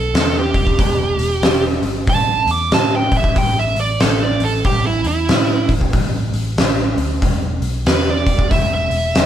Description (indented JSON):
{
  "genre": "blues rock power trio and southern rock",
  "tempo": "93 BPM",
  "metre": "4/4",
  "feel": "swing 62% on 8ths",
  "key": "unclear",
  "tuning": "A4 = 438 Hz",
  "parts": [
    { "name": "bluesy overdriven lead guitar", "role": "second line", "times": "0.0-9.3 s", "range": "E4 to D6", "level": "-19 LUFS", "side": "right 3 dB", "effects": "distortion" },
    { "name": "vintage muted picked electric bass", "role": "bass", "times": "0.0-9.3 s", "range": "E1 to A2", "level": "-21 LUFS", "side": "equal", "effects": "none" },
    { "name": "oversized low-tuned drum kit", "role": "drums", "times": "0.1-9.3 s", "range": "hi-hat, kick drum, snare drum", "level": "-17 LUFS", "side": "equal", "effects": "none" }
  ],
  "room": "light reverb",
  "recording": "band playing live in one room",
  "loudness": "-14 LUFS",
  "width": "side -10 dB against mid",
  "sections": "0.0-9.3 A section",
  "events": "lead electric guitar solo 0.0-9.3",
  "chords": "0.0 Em; 2.1 A5; 7.2 E5"
}